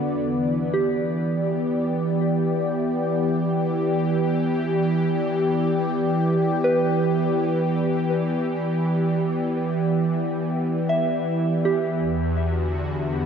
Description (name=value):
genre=ambient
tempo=61 BPM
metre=3/4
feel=straight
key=E minor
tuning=A4 = 440 Hz
part: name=warm analog pad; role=sustained chords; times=0.0-13.3 s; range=E2 to D5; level=-21 LUFS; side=equal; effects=chorus, shimmer reverb
part: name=soft synth bell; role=arpeggios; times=0.0-13.3 s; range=G4 to E5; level=-28 LUFS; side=equal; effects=chorus, ping-pong delay, shimmer reverb
room=wet cathedral reverb, RT60 6.2 s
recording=in a vast, echoing space, faint mains hum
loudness=-20 LUFS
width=side -7 dB against mid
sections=0.3-13.3 A section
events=none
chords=0.3 Em7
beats=| 0.28 1.27 2.25 | 3.23 4.21 5.18 | 6.15 7.12 8.09 | 9.06 10.04 11.02 | 12.00 12.98